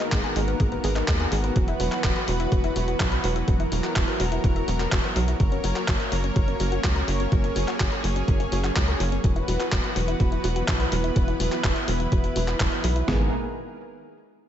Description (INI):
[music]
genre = italo disco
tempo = 125 BPM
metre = 4/4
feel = straight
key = unclear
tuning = A4 = 440 Hz
[part]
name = lush unison pad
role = sustained chords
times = 0.0-13.3 s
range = D#3 to C#5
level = -28 LUFS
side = equal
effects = chorus
[part]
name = analog pluck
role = arpeggios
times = 0.0-13.3 s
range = F#3 to B4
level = -32 LUFS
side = left 2 dB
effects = chorus, ping-pong delay
[part]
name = detuned 8-bit digital drum machine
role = drums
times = 0.0-13.1 s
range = handclaps, hi-hat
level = -30 LUFS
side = equal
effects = gated reverb
[part]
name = tight sequencer bass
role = bass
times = 0.1-13.3 s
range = E1 to D#2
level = -26 LUFS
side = equal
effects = tube saturation
[part]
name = detuned 8-bit digital drum machine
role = drums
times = 0.1-13.2 s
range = kick drum, snare drum, toms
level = -25 LUFS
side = equal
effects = none
[sound]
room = light reverb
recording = nothing above 7.9 kHz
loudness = -21 LUFS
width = side -10 dB against mid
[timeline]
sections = 0.0-13.1 A section; 13.1-14.5 B section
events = filter sweep on synth arpeggio sound 0.0-13.1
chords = 0.0 G#madd9; 1.6 Esus2; 5.4 F#; 9.2 Esus2; 13.1 G#madd9